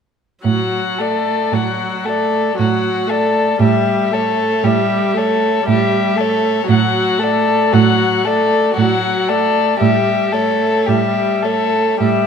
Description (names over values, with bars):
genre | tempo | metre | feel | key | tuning
classical, slow romantic movement for string quartet | 58 BPM | 3/4 | rubato | D major | A4 = 443 Hz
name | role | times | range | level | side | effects
muted viola | accompaniment | 0.4-12.3 s | F#3 to A3 | -19 LUFS | right 3 dB | none
muted cello | bass | 0.4-12.3 s | A2 | -18 LUFS | right 6 dB | none
muted violin | melody | 0.5-12.3 s | C#5 to F#5 | -20 LUFS | left 10 dB | none
muted violin | second line | 0.5-12.3 s | F#4 to A4 | -19 LUFS | left 4 dB | none
room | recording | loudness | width
moderate recital hall reverb, RT60 1.8 s | none | -13 LUFS | side -6 dB against mid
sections
0.4-12.3 A section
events
none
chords
0.4 D/A; 3.6 A7; 6.7 D/A; 9.8 A7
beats
| 0.45 1.53 2.58 | 3.61 4.64 5.68 | 6.70 7.73 8.77 | 9.80 10.87 12.00